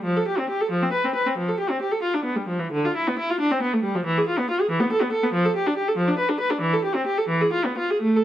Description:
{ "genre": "classical, baroque-style suite movement for unaccompanied viola", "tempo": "90 BPM (dotted quarters)", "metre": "12/8", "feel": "uneven beats, rubato", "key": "unclear", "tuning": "A4 = 441 Hz", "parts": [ { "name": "warm viola", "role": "solo", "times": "0.0-8.2 s", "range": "D3 to B4", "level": "-20 LUFS", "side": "equal", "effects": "none" } ], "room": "moderate stone room reverb, RT60 1.0 s", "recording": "dark, warm production", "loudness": "-21 LUFS", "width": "side -12 dB against mid", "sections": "0.0-8.2 A section", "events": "none", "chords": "none", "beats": "| 0.04 0.71 1.38 2.04 | 2.74 3.42 4.06 4.70 | 5.34 5.98 6.62 7.28 | 8.03" }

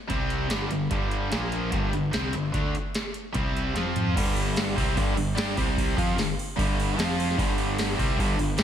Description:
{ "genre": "hard rock", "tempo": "149 BPM", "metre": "4/4", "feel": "straight", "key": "G minor", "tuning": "A4 = 441 Hz", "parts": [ { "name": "distorted electric guitar", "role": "riff", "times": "0.1-8.6 s", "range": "G2 to G4", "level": "-30 LUFS", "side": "equal", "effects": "distortion" }, { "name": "tight distorted guitar", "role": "riff", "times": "0.1-8.6 s", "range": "G2 to G4", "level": "-30 LUFS", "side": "right 1 dB", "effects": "distortion, slapback echo" }, { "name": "fuzz picked electric bass", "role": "bass", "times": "0.1-8.6 s", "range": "G1 to G2", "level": "-31 LUFS", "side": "equal", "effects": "overdrive" }, { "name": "booming analog drum machine", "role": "drums", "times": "0.1-8.6 s", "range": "crash cymbal, hi-hat, kick drum, snare drum, toms", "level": "-28 LUFS", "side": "equal", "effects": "none" } ], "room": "light reverb", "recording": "none", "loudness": "-24 LUFS", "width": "side -9 dB against mid", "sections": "0.0-4.2 A section; 4.2-8.6 B section", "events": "drum fill 3.8-4.2", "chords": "0.1 C5; 0.5 G5; 1.3 Bb5; 1.7 G5; 3.4 C5; 3.8 F5; 4.2 G5; 5.6 C5; 6.0 G5; 7.0 F5; 7.4 G5", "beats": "0.10 0.51 | 0.92 1.33 1.73 2.14 | 2.55 2.95 3.36 3.76 | 4.17 4.57 4.97 5.38 | 5.78 6.18 6.58 6.98 | 7.38 7.78 8.18 8.59" }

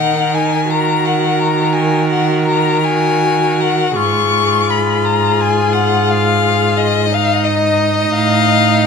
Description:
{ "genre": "classical, slow romantic movement for string quartet", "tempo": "52-59 BPM (dotted quarters)", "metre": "12/8", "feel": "rubato", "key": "Eb minor", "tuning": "A4 = 439 Hz", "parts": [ { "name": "rich violin", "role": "melody", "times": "0.0-8.9 s", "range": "Eb5 to Db6", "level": "-16 LUFS", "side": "left 9 dB", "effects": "none" }, { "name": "clear violin", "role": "second line", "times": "0.0-8.9 s", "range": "Ab4 to Eb5", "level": "-20 LUFS", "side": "left 5 dB", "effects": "none" }, { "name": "clear viola", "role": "accompaniment", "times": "0.0-8.9 s", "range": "Eb4 to Gb4", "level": "-20 LUFS", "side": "right 2 dB", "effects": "none" }, { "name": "clear cello", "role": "bass", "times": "0.0-8.9 s", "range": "Ab2 to Eb3", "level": "-17 LUFS", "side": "right 6 dB", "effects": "none" } ], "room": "light reverb", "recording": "close, detailed microphones", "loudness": "-12 LUFS", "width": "side -6 dB against mid", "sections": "0.0-8.9 A section", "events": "none", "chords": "0.0 Ebm; 3.9 Ab5; 8.1 F7/A", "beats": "0.70 1.75 2.81 | 3.95 5.04 6.07 7.11 | 8.15" }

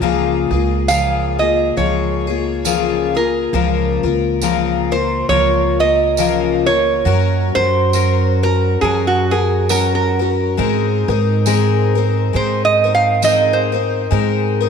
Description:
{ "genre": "acoustic folk duo or small band", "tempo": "68 BPM", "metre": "4/4", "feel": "swing 57% on 8ths", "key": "Db major", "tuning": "A4 = 441 Hz", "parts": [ { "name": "picked twelve-string acoustic guitar", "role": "accompaniment", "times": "0.0-14.7 s", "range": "Db3 to Bb4", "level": "-18 LUFS", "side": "left 10 dB", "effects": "none" }, { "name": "upright bass", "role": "bass", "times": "0.0-14.7 s", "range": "Db2 to Ab2", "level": "-19 LUFS", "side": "right 2 dB", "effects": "none" }, { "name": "lap resonator guitar", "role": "melody", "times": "0.9-14.1 s", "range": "Gb4 to F5", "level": "-17 LUFS", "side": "right 4 dB", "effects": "none" }, { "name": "tambourine", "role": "percussion", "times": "0.9-13.5 s", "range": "none", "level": "-25 LUFS", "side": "right 17 dB", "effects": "none" } ], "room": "moderate plate reverb, RT60 2.4 s", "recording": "1960s-style stereo with parts hard left and right", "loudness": "-14 LUFS", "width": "side -6 dB against mid", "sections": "0.0-14.1 A section", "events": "resonator guitar played with a steel bar solo 0.0-14.1", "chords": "0.0 Db6; 3.5 Bbm/Db; 7.1 Gb; 10.6 Abadd9", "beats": "| 0.02 0.90 1.77 2.65 | 3.53 4.41 5.29 6.17 | 7.06 7.94 8.82 9.70 | 10.58 11.46 12.34 13.22 | 14.10" }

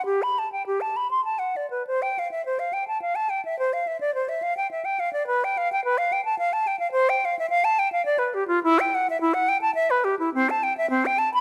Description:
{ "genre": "classical, baroque-style fantasia for unaccompanied flute", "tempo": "96-110 BPM", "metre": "3/4", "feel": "rubato", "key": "C major", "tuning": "A4 = 440 Hz", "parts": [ { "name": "bright silver concert flute", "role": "solo", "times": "0.0-11.4 s", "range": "C4 to C6", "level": "-24 LUFS", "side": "equal", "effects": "none" } ], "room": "moderate recital hall reverb, RT60 1.4 s", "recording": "close, detailed microphones", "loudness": "-24 LUFS", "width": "mono", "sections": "0.0-1.9 A section; 1.9-11.4 A section", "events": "none", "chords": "none", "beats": "| 0.05 0.66 1.25 | 1.86 2.45 3.02 | 3.58 4.14 4.70 | 5.28 5.85 6.41 | 6.96 7.52 8.07 | 8.64 9.20 9.76 | 10.32 10.89" }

